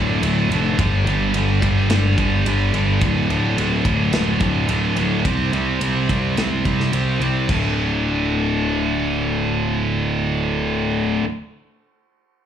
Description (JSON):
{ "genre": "hard rock", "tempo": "107 BPM", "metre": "4/4", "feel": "straight", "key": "unclear", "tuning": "A4 = 438 Hz", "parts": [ { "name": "overdriven electric guitar", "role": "riff", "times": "0.0-11.2 s", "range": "D2 to C4", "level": "-25 LUFS", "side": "left 13 dB", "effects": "slapback echo" }, { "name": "scooped high-gain guitar", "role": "riff", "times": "0.0-11.2 s", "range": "D2 to C4", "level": "-21 LUFS", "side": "right 5 dB", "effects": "distortion, slapback echo" }, { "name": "fuzz picked electric bass", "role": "bass", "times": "0.0-11.2 s", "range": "D1 to C2", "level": "-21 LUFS", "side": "equal", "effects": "overdrive" }, { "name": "tight metal drum kit", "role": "drums", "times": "0.2-7.6 s", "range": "crash cymbal, kick drum, ride cymbal, snare drum", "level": "-26 LUFS", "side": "equal", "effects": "none" } ], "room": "small room ambience", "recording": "live gig heard through the venue's PA, club reverb", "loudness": "-17 LUFS", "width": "side -9 dB against mid", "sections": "0.0-7.5 A section; 7.5-9.7 B section", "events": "none", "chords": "0.0 Dm; 0.8 G5; 3.0 D5; 5.3 C5; 7.5 D5", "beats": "0.23 | 0.78 1.34 1.90 2.46 | 3.02 3.58 4.13 4.69 | 5.25 5.81 6.37 6.93 | 7.49 8.05 8.61 9.17" }